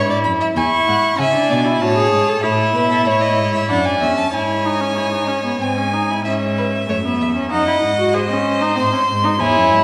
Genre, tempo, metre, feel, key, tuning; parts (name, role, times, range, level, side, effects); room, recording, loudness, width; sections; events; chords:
classical, baroque-style fugue for string quartet; 95 BPM; 3/4; straight; C# minor; A4 = 435 Hz
clear violin; second line; 0.0-9.8 s; A4 to G#5; -24 LUFS; equal
rich viola; accompaniment; 0.0-9.8 s; A3 to A4; -21 LUFS; equal
rich cello; bass; 0.0-9.8 s; E2 to C#3; -25 LUFS; equal
clear violin; melody; 0.2-9.8 s; C#5 to C#6; -24 LUFS; equal
wet recital hall reverb, RT60 1.5 s; recorded in a church or concert hall, vinyl crackle; -17 LUFS; mono
0.0-6.3 A section; 6.3-9.8 B section
0.0 N.C.; 0.6 C#m; 1.8 A; 3.7 D/F#; 4.3 C#m/G#; 5.6 G#; 6.3 C#m/G#; 7.5 Emaj9/F#; 8.1 G#